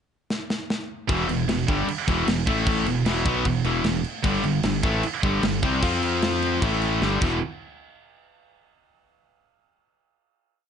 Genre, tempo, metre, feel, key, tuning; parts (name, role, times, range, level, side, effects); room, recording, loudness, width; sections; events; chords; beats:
heavy metal; 152 BPM; 4/4; straight; E phrygian; A4 = 440 Hz
tight metal drum kit; drums; 0.3-7.3 s; crash cymbal, kick drum, snare drum; -27 LUFS; equal
distorted electric guitar; riff; 1.1-7.4 s; E2 to F4; -26 LUFS; left 11 dB; distortion
scooped high-gain guitar; riff; 1.1-7.4 s; E2 to F4; -26 LUFS; right 10 dB; distortion
modern bright fingered electric bass; bass; 1.1-7.4 s; E1 to F2; -28 LUFS; equal
light reverb; nothing above 10.6 kHz; -21 LUFS; side -8 dB against mid
0.0-1.1 pickup bar; 1.1-7.4 riff; 7.4-9.0 final hit
drum fill 0.3-1.1, 7.0-7.4
0.0 N.C.; 1.1 Em; 2.5 A5; 2.9 E5; 4.2 G5; 5.8 F5; 6.6 A5; 7.0 G5; 7.2 E5; 7.4 N.C.
0.29 0.68 | 1.08 1.48 1.87 2.27 | 2.66 3.06 3.45 3.85 | 4.24 4.64 5.03 5.43 | 5.82 6.22 6.62 7.02